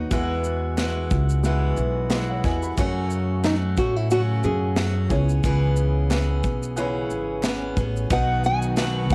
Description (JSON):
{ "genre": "acoustic pop", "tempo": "90 BPM", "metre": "4/4", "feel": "swing 55% on 16ths", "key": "E major", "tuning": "A4 = 440 Hz", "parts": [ { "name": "felt-muted upright piano", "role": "accompaniment", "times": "0.0-9.1 s", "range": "G#3 to B5", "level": "-36 LUFS", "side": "equal", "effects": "none" }, { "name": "picked acoustic archtop guitar", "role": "accompaniment", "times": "0.0-9.1 s", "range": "F#2 to G#4", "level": "-30 LUFS", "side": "equal", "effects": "none" }, { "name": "upright bass", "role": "bass", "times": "0.0-9.1 s", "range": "G#1 to A2", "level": "-26 LUFS", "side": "equal", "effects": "none" }, { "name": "modern studio drum kit", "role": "drums", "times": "0.1-9.1 s", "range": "kick drum, shaker, snare drum", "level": "-29 LUFS", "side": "equal", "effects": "none" }, { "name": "group handclap", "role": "percussion", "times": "0.8-7.6 s", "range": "none", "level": "-46 LUFS", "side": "equal", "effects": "none" }, { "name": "nylon-string guitar", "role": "melody", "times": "3.5-9.1 s", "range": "D#4 to G#5", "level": "-27 LUFS", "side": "equal", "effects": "cassette tape" }, { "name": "rich studio string section", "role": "sustained chords", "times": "8.1-9.1 s", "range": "D#3 to F#4", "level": "-36 LUFS", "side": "equal", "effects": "none" } ], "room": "light reverb, studio ambience", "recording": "home recording on cassette", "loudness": "-23 LUFS", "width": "mono", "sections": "0.0-8.1 A section; 8.1-9.1 B section", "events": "none", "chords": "0.1 Eadd9; 2.8 F#m; 5.1 C#m7; 8.1 B", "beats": "| 0.12 0.78 1.45 2.11 | 2.78 3.44 4.11 4.78 | 5.44 6.11 6.78 7.44 | 8.11 8.77" }